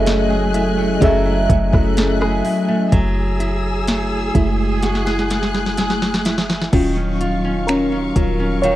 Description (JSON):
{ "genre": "contemporary R&B", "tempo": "63 BPM", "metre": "4/4", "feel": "straight", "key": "unclear", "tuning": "A4 = 441 Hz", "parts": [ { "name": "FM electric piano with soft pad layer", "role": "accompaniment", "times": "0.0-8.8 s", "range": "Gb3 to Fb5", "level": "-19 LUFS", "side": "equal", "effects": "chorus, phaser" }, { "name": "warm symphonic string section", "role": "sustained chords", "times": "0.0-8.8 s", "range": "Gb3 to Gb6", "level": "-26 LUFS", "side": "equal", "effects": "sidechain pumping" }, { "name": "nylon-string guitar", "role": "arpeggios", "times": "0.0-8.8 s", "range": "Eb3 to Ab4", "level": "-23 LUFS", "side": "equal", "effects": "none" }, { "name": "soft 808-style bass", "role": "bass", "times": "0.0-8.8 s", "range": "Eb1 to Gb1", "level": "-21 LUFS", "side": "equal", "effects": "none" }, { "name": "smooth R&B drum kit", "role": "drums", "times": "0.1-8.8 s", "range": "crash cymbal, finger snaps, hi-hat, kick drum, rim click, snare drum", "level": "-19 LUFS", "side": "equal", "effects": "overdrive" } ], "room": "digital ambience", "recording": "worn, warbling old tape, cassette tape, warbly pitch drift", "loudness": "-15 LUFS", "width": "side -14 dB against mid", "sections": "0.0-2.9 A section; 2.9-6.7 B section; 6.7-8.8 C section", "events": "drum fill 4.8-6.7; FM electric piano solo 6.7-8.8", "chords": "0.0 Gbm9; 6.7 Ebm9" }